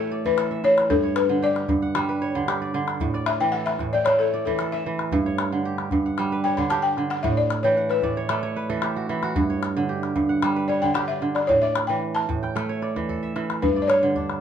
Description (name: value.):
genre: west african traditional, West African string and xylophone music.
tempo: 113 BPM.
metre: 4/4.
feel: straight.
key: G lydian.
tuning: A4 = 440 Hz.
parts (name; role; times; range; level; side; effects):
balafon; melody; 0.0-14.4 s; A4 to B5; -22 LUFS; left 3 dB; none.
kora; arpeggios; 0.0-14.4 s; G2 to G5; -24 LUFS; right 3 dB; none.
calabash; percussion; 0.2-14.4 s; none; -30 LUFS; left 3 dB; none.
room: moderate large studio reverb, RT60 0.8 s.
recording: band playing live in one room.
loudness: -21 LUFS.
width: side -8 dB against mid.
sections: 0.0-13.6 A section.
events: balafon solo 0.0-13.6; kora fill 7.6-9.4; drum fill 13.1-13.6.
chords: 0.0 A; 0.9 G; 3.0 A; 5.1 G; 7.2 A5; 9.4 G; 11.5 A; 13.6 G5.